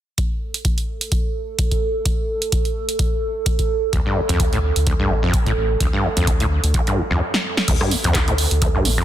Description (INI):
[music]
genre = acid house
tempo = 128 BPM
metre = 4/4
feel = swing 55% on 16ths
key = D minor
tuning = A4 = 443 Hz
[part]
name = dark analog pad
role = sustained chords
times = 1.0-9.0 s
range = A4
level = -26 LUFS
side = right 4 dB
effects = chorus, phaser, sidechain pumping
[part]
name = electronic kick drum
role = drums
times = 0.2-8.7 s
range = none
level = -21 LUFS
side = equal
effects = none
[part]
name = punchy analog drum machine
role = drums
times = 0.2-9.0 s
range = crash cymbal, handclaps, hi-hat, rim click, snare drum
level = -23 LUFS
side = right 1 dB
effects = none
[part]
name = overdriven acid bass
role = riff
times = 3.9-9.0 s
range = D2 to A2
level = -21 LUFS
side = equal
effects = distortion, tube saturation, lush chorus, tape echo
[part]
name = round analog bass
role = bass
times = 3.9-9.0 s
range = A1 to D2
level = -21 LUFS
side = equal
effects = sidechain pumping
[sound]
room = light reverb, digital ambience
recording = dense, heavily limited modern master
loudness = -17 LUFS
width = side -12 dB against mid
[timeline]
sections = 0.2-7.7 A section; 7.7-9.0 B section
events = drum fill 7.3-7.7; filter sweep on acid bass 7.7-9.0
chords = 0.2 D5; 7.7 Dm